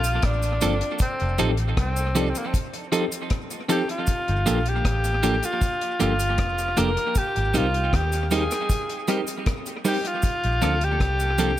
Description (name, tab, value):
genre	lovers rock reggae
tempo	78 BPM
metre	4/4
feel	straight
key	Bb major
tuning	A4 = 442 Hz
part	breathy tenor saxophone	melody	0.0-11.6 s	Bb3 to Bb4	-26 LUFS	equal	tape echo
part	vintage muted fingered electric bass	bass	0.0-11.5 s	F1 to Eb2	-25 LUFS	equal	none
part	deep reggae drum kit	drums	0.0-11.6 s	hi-hat, kick drum, rim click	-27 LUFS	equal	gated reverb, dub echo
part	cabasa	percussion	0.0-11.6 s	none	-37 LUFS	right 4 dB	none
part	tine electric piano	accompaniment	0.6-11.5 s	Bb3 to Bb4	-30 LUFS	left 2 dB	overdrive, fast stereo tremolo
part	clean electric guitar	stabs	0.6-11.5 s	F3 to A4	-28 LUFS	right 4 dB	spring reverb, dub echo
room	light reverb, studio reverb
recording	none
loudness	-21 LUFS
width	side -13 dB against mid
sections	0.0-11.6 A section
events	none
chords	0.0 Bbmaj7; 1.0 F7; 4.1 Gm7; 7.2 Abmaj7; 10.2 Bbmaj7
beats	0.23 | 1.00 1.77 2.54 3.31 | 4.08 4.85 5.62 6.39 | 7.16 7.93 8.70 9.46 | 10.23 11.00